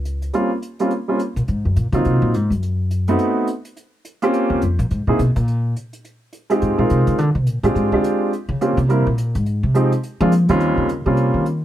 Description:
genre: jazz piano trio.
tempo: 210 BPM.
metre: 4/4.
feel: swing 60% on 8ths.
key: Eb mixolydian.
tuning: A4 = 440 Hz.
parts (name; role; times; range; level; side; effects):
upright bass; bass; 0.0-11.6 s; Db2 to F3; -18 LUFS; equal; none.
hi-hat; drums; 0.1-11.5 s; none; -44 LUFS; right 3 dB; none.
warm baby grand piano; melody; 0.3-11.4 s; Eb2 to Bb4; -18 LUFS; right 1 dB; none.
room: little or no reverb.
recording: close, detailed microphones.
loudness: -16 LUFS.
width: side -12 dB against mid.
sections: 0.0-10.6 A section; 10.6-11.6 A section.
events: upright bass solo 0.0-11.6.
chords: 0.0 Eb13 (rootless); 1.5 Ab13; 2.6 Adim7; 3.8 Dbmaj7#11; 4.9 C7(#5, no3) (rootless); 6.0 Fm7; 7.2 Bb13; 8.3 Bbm69; 8.9 C7; 9.5 Fm7; 10.0 Bb5; 10.6 Eb13.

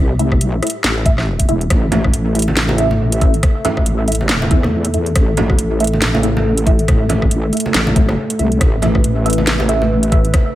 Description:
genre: deep dubstep.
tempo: 139 BPM.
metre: 4/4.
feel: swing 58% on 16ths, half-time.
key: A minor.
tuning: A4 = 439 Hz.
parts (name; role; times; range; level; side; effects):
dark analog pad; sustained chords; 0.0-10.6 s; A3 to B4; -23 LUFS; equal; chorus.
wobble bass; bass; 0.0-10.3 s; E1 to E2; -17 LUFS; equal; chorus.
filtered dub chord stab; stabs; 0.2-10.2 s; A3 to E5; -22 LUFS; equal; phaser, lush chorus, dub echo.
garage drum kit; drums; 0.2-10.4 s; hi-hat, rim click, snare drum; -20 LUFS; equal; none.
electronic kick drum; drums; 0.3-10.4 s; none; -14 LUFS; equal; none.
congas; percussion; 1.7-10.4 s; none; -22 LUFS; right 2 dB; dub echo.
room: light reverb, digital ambience.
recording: none.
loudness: -12 LUFS.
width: side -14 dB against mid.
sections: 0.0-10.6 A section.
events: none.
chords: 0.0 A5.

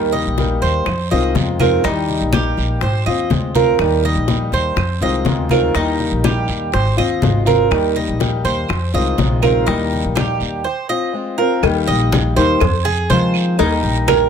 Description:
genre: latin, Cuban son and guajira.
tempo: 122 BPM.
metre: 4/4.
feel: straight.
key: Eb major.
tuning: A4 = 441 Hz.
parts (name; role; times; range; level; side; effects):
fingerpicked old ladder-braced acoustic guitar; accompaniment; 0.0-14.3 s; Eb3 to G4; -20 LUFS; left 5 dB; none.
Cuban tres; arpeggios; 0.0-14.3 s; Eb4 to Eb5; -19 LUFS; right 8 dB; none.
upright bass; bass; 0.0-14.3 s; Ab1 to F3; -20 LUFS; equal; none.
bongos and cowbell; percussion; 0.1-14.3 s; none; -25 LUFS; left 9 dB; none.
congas; percussion; 0.1-14.3 s; none; -22 LUFS; left 2 dB; none.
guiro; percussion; 0.4-14.3 s; none; -31 LUFS; right 8 dB; none.
claves; percussion; 0.9-14.3 s; none; -28 LUFS; right 9 dB; none.
room: light reverb.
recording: close, detailed microphones.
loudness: -14 LUFS.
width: side -7 dB against mid.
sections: 0.0-11.6 A section; 11.6-14.3 B section.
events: none.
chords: 0.0 Eb; 0.9 Fm7; 1.8 Eb; 2.8 Ab6; 3.8 Eb; 4.8 Fm7; 5.8 Eb; 6.7 Ab6; 7.7 Eb; 8.7 Fm7; 9.7 Eb; 10.7 Ab6; 11.6 Eb; 12.6 Fm7; 13.6 Eb.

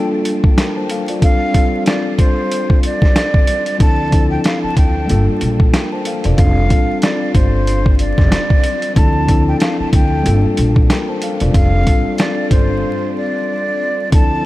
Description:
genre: hip hop, boom-bap hip-hop.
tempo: 93 BPM.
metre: 4/4.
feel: swing 57% on 16ths.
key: unclear.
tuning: A4 = 440 Hz.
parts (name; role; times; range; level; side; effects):
breathy mellow silver concert flute; melody; 0.0-14.5 s; C5 to A5; -21 LUFS; right 1 dB; high-pass filter, low-pass filter, ping-pong delay.
mellow tine electric piano; accompaniment; 0.0-14.5 s; F3 to A5; -19 LUFS; left 2 dB; high-pass filter, low-pass filter.
dusty soul sampler-style drum kit; drums; 0.3-14.3 s; hi-hat, kick drum, snare drum; -15 LUFS; equal; none.
upright bass; bass; 3.8-14.5 s; E1 to D2; -17 LUFS; equal; none.
room: light reverb, studio reverb.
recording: vinyl crackle.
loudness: -12 LUFS.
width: side -17 dB against mid.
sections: 0.0-14.1 A section.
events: break 0.0-3.8, 12.8-14.1.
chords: 0.0 Gm9; 1.2 F6; 3.8 Dm9; 5.1 Gm9; 6.4 F6; 9.0 Dm9; 10.3 Gm9; 11.5 F6.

